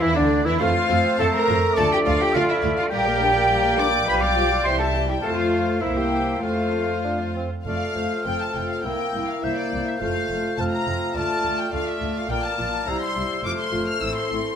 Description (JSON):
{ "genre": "quick classical-period movement for symphony orchestra", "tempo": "104 BPM", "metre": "2/4", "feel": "rubato", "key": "F major", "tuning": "A4 = 440 Hz", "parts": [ { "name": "warm studio violin section", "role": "melody", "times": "0.0-14.6 s", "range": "D4 to F6", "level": "-31 LUFS", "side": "left 4 dB", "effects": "none" }, { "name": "clear clarinet", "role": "second line", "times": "0.0-14.4 s", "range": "D4 to F5", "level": "-31 LUFS", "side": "left 2 dB", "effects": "none" }, { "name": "concert flute", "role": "second line", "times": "0.0-14.4 s", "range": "D5 to G6", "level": "-28 LUFS", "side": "left 2 dB", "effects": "none" }, { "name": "warm oboe", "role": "second line", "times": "0.0-7.3 s", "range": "D4 to G5", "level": "-28 LUFS", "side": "right 1 dB", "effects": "none" }, { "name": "warm studio violin section", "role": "second line", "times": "0.0-14.6 s", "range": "D5 to F6", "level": "-30 LUFS", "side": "left 2 dB", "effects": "none" }, { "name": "mellow bassoon", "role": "accompaniment", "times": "0.0-14.6 s", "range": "D3 to D4", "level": "-29 LUFS", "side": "right 1 dB", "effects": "none" }, { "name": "warm studio viola section", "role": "accompaniment", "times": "0.0-14.6 s", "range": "D3 to Bb4", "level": "-29 LUFS", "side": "equal", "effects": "none" }, { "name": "mellow French horn section", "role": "sustained chords", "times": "0.0-14.4 s", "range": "D3 to F4", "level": "-30 LUFS", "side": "left 4 dB", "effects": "none" }, { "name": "dark studio double bass section", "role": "bass", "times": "0.0-14.4 s", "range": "F1 to F2", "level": "-29 LUFS", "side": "right 2 dB", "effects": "none" }, { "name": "warm studio cello section", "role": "bass", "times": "0.0-14.4 s", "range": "C2 to D5", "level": "-27 LUFS", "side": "right 2 dB", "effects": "none" } ], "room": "moderate recital hall reverb, RT60 1.4 s", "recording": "none", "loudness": "-20 LUFS", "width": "side -8 dB against mid", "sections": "0.0-7.7 A section; 7.7-14.6 A section", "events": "none", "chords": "0.0 Dsus2; 0.6 F; 1.8 Dm; 2.9 Gm/Bb; 4.1 G7/B; 4.6 C; 5.2 F; 5.8 C7; 6.4 F; 8.8 C7; 10.0 F; 11.2 Dm; 12.3 Bbmaj7; 12.9 C; 13.4 F; 14.0 Am" }